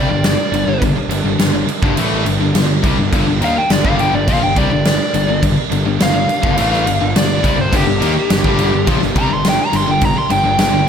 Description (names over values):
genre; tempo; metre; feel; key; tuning
hard rock; 104 BPM; 4/4; straight; G minor; A4 = 440 Hz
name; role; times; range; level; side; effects
smooth overdriven lead guitar; melody; 0.0-10.9 s; G4 to C6; -18 LUFS; equal; none
overdriven tonewheel organ; sustained chords; 0.0-10.9 s; G3 to Bb4; -28 LUFS; right 1 dB; none
overdriven electric guitar; riff; 0.0-10.9 s; G2 to Bb3; -21 LUFS; left 10 dB; spring reverb, slapback echo
scooped high-gain guitar; riff; 0.0-10.9 s; G2 to Bb3; -23 LUFS; right 7 dB; distortion
fuzz picked electric bass; bass; 0.0-10.9 s; G1 to Eb2; -20 LUFS; right 1 dB; overdrive
huge arena drum kit; drums; 0.2-10.7 s; crash cymbal, kick drum, snare drum; -17 LUFS; equal; none
biting overdriven guitar; riff; 7.7-10.9 s; G2 to Bb3; -24 LUFS; right 1 dB; none
room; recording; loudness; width
moderate recital hall reverb, RT60 1.5 s, studio reverb; big arena sound; -12 LUFS; side -7 dB against mid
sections
0.0-10.9 A section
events
lead electric guitar solo 0.0-10.9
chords
0.0 Gm